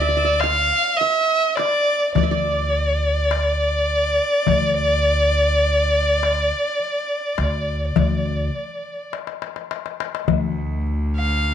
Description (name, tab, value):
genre	Turkish makam ensemble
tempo	103 BPM (eighths)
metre	10/8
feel	straight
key	unclear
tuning	A4 = 440 Hz
part	warm violin	melody	0.0-11.5 s	D5 to F5	-19 LUFS	equal	none
part	qanun	second line	0.0-9.1 s	D5 to F5	-29 LUFS	right 12 dB	none
part	upright bass	bass	0.0-11.5 s	D2	-22 LUFS	equal	none
part	darbuka	percussion	0.4-11.0 s	none	-24 LUFS	left 12 dB	none
part	bright cello	drone	10.3-11.5 s	D2	-28 LUFS	left 1 dB	none
room	moderate plate reverb, RT60 2.5 s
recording	1960s-style stereo with parts hard left and right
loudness	-18 LUFS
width	side -9 dB against mid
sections	0.0-10.3 A section; 10.3-11.5 B section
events	drum fill 9.1-10.3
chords	none